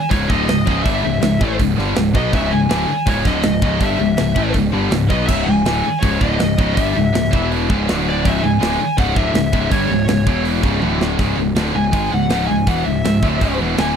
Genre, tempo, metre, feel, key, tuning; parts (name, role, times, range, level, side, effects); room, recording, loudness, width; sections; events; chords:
heavy metal; 162 BPM; 4/4; straight; C# minor; A4 = 437 Hz
high-gain lead guitar; melody; 0.0-14.0 s; C#5 to G#5; -22 LUFS; left 2 dB; distortion, slapback echo
heavy high-gain guitar; riff; 0.1-14.0 s; C#2 to B3; -23 LUFS; right 13 dB; distortion
heavy high-gain guitar; riff; 0.1-14.0 s; C#2 to B3; -24 LUFS; right 2 dB; distortion
tight distorted guitar; riff; 0.1-14.0 s; C#2 to B3; -21 LUFS; left 11 dB; distortion
fuzz picked electric bass; bass; 0.1-14.0 s; C#1 to B1; -21 LUFS; right 1 dB; overdrive
tight metal drum kit; drums; 0.1-13.9 s; crash cymbal, hi-hat, kick drum, snare drum, toms; -21 LUFS; right 1 dB
little or no reverb; dry, close 1970s-style studio recording; -14 LUFS; side -7 dB against mid
0.0-11.2 A section; 11.2-14.0 B section
drum fill 10.8-11.2; lead electric guitar solo 11.2-14.0
0.0 C#m; 7.3 E5; 7.7 C#5; 7.9 D5; 8.2 C#m; 10.3 E5; 10.6 C#5; 10.8 D5; 11.2 C#m